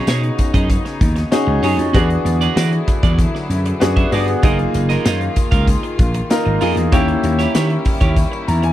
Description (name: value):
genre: polished 1980s jazz-funk pop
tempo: 96 BPM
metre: 4/4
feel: straight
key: unclear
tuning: A4 = 440 Hz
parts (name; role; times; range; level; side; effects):
- clear baby grand piano; accompaniment; 0.0-8.7 s; A#3 to A#5; -20 LUFS; left 1 dB; wide subtle chorus
- warm studio string section; sustained chords; 0.0-8.7 s; C#3 to G#4; -26 LUFS; left 2 dB; none
- electric guitar at the edge of break-up; riff; 0.0-8.7 s; D#4 to E#5; -24 LUFS; right 8 dB; lush chorus
- vintage slap bass; bass; 0.1-8.7 s; F#1 to E3; -18 LUFS; equal; none
- modern studio drum kit; drums; 0.1-8.7 s; hi-hat, kick drum, snare drum; -17 LUFS; equal; none
- tambourine; percussion; 0.1-8.6 s; none; -38 LUFS; left 10 dB; none
room: small room ambience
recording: dry, close 1970s-style studio recording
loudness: -14 LUFS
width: side -13 dB against mid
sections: 0.0-8.7 A section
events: grand piano fill 8.2-8.7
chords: 0.0 B69; 1.9 E9; 4.4 F#maj13; 6.9 D#7b9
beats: 0.07 0.70 1.32 | 1.94 2.56 3.19 3.81 | 4.43 5.06 5.68 6.30 | 6.92 7.55 8.17